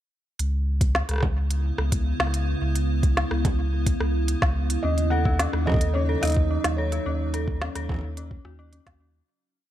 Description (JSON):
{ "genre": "IDM", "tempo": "108 BPM", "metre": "4/4", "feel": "straight", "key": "C# minor", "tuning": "A4 = 440 Hz", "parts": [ { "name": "icy glass pad", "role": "sustained chords", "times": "1.4-9.3 s", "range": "C#3 to E4", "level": "-31 LUFS", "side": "right 2 dB", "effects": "chorus, built-in reverb, vintage 12-bit sampler grit, sidechain pumping" }, { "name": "warm sub bass", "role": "bass", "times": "0.4-9.2 s", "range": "C#2 to D#2", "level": "-25 LUFS", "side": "equal", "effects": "none" }, { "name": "organic electronic drum kit", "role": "drums", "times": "0.4-9.0 s", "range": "congas, hi-hat, rim click, snare drum", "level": "-28 LUFS", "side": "right 1 dB", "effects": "studio reverb" }, { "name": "electronic kick drum", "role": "drums", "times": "0.8-9.0 s", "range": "none", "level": "-24 LUFS", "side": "equal", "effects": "studio reverb" }, { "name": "felt-muted upright piano", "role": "melody", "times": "4.8-8.4 s", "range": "C#5 to F#5", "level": "-31 LUFS", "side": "right 1 dB", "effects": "vintage 12-bit sampler grit, digital delay" }, { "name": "dark detuned synth bell", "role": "arpeggios", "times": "4.8-9.1 s", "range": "C#4 to A4", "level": "-32 LUFS", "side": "left 4 dB", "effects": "chorus, ping-pong delay" } ], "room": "little or no reverb", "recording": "dark, warm production", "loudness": "-22 LUFS", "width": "side -12 dB against mid", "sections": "0.4-9.3 groove", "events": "fade-out 6.3-9.3", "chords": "0.4 C#m7; 4.8 D#m7", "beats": "| 0.39 0.95 1.50 2.06 | 2.62 3.17 3.73 4.28 | 4.84 5.39 5.95 6.50 | 7.06 7.62 8.17 8.73" }